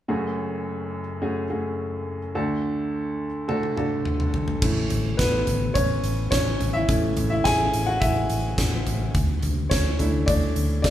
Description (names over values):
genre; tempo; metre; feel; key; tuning
piano-driven pop; 106 BPM; 4/4; straight; A major; A4 = 440 Hz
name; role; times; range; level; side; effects
clear upright piano; accompaniment; 0.1-10.9 s; F#1 to G#5; -25 LUFS; equal; none
huge arena drum kit; drums; 3.5-10.9 s; crash cymbal, hi-hat, kick drum, snare drum, toms; -25 LUFS; equal; none
vintage muted fingered electric bass; bass; 4.6-10.9 s; A1 to D2; -26 LUFS; equal; none
tambourine; percussion; 4.6-10.9 s; none; -41 LUFS; right 5 dB; none
room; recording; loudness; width
moderate large studio reverb, RT60 1.2 s; band playing live in one room; -22 LUFS; side -12 dB against mid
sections
0.1-4.6 A section; 4.6-10.9 B section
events
drum fill 3.5-4.6; upright piano solo 4.6-10.9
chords
0.1 F#madd9; 2.4 D; 4.6 A; 9.1 Dsus2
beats
| 0.08 0.65 1.22 1.78 | 2.35 2.92 3.49 4.05 | 4.62 5.18 5.75 6.32 | 6.88 7.45 8.02 8.58 | 9.15 9.71 10.28 10.85